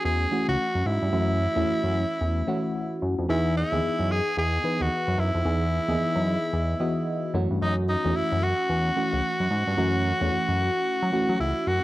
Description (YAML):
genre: R&B, new jack swing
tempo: 111 BPM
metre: 4/4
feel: swing 61% on 16ths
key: F# dorian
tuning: A4 = 440 Hz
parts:
  - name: raspy tenor saxophone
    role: melody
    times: 0.0-11.8 s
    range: D#4 to G#4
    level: -27 LUFS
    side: equal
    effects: cassette tape
  - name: FM electric piano with auto-pan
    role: accompaniment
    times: 0.0-11.8 s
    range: E3 to D#5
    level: -28 LUFS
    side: equal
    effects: phaser, cassette tape
  - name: fat analog bass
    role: bass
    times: 0.0-11.8 s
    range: C#2 to F#3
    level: -26 LUFS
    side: equal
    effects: none
room: moderate small room reverb, RT60 0.5 s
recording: home recording on cassette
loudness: -23 LUFS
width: side -16 dB against mid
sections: 0.0-11.8 A section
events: none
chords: 0.0 F#m7; 3.3 Emaj7; 7.3 F#m7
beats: 0.04 0.59 | 1.13 1.67 2.21 2.75 | 3.29 3.83 4.37 4.91 | 5.45 5.99 6.53 7.07 | 7.61 8.15 8.69 9.23 | 9.78 10.31 10.86 11.40